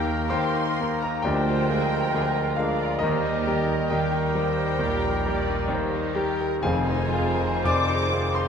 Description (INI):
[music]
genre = classical, romantic movement for piano and orchestra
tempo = 56-69 BPM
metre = 4/4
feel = rubato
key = Eb major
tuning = A4 = 440 Hz
[part]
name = clear concert grand piano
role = melody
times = 0.0-8.5 s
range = F1 to D6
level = -25 LUFS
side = equal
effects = none
[part]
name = muted symphonic violin section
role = melody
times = 0.0-8.5 s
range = Bb3 to Bb4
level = -34 LUFS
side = left 3 dB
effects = none
[part]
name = concert flute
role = second line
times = 0.0-8.5 s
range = Eb5 to D6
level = -34 LUFS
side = left 1 dB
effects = none
[part]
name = muted symphonic violin section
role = second line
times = 0.0-8.5 s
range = Eb5 to D6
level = -34 LUFS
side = left 2 dB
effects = none
[part]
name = warm clarinet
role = second line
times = 0.0-8.5 s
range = Eb4 to G4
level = -35 LUFS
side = left 1 dB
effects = none
[part]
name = warm oboe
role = second line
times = 0.0-8.5 s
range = Bb4 to C5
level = -35 LUFS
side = right 2 dB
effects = none
[part]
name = warm bassoon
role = accompaniment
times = 0.0-8.5 s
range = Eb3 to Bb3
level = -34 LUFS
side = right 2 dB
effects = none
[part]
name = mellow French horn section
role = sustained chords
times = 0.0-8.5 s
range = Eb3 to C5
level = -33 LUFS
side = left 3 dB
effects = none
[part]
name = muted symphonic cello section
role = bass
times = 0.0-7.5 s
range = D2 to Bb2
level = -34 LUFS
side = right 5 dB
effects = none
[part]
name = muted symphonic double bass section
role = bass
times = 0.0-7.5 s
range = F1 to Eb2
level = -34 LUFS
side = right 4 dB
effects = none
[part]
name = timpani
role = percussion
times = 0.0-0.8 s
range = none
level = barely audible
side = none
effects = none
[part]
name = muted symphonic viola section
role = accompaniment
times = 1.3-8.5 s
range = Ab4 to D5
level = -34 LUFS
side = equal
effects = none
[sound]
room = moderate recital hall reverb, RT60 1.4 s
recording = none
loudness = -22 LUFS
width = side -7 dB against mid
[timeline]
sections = 0.0-8.5 A section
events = none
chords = 0.0 Eb; 1.2 Bb7/D; 3.0 Eb; 6.6 Fm7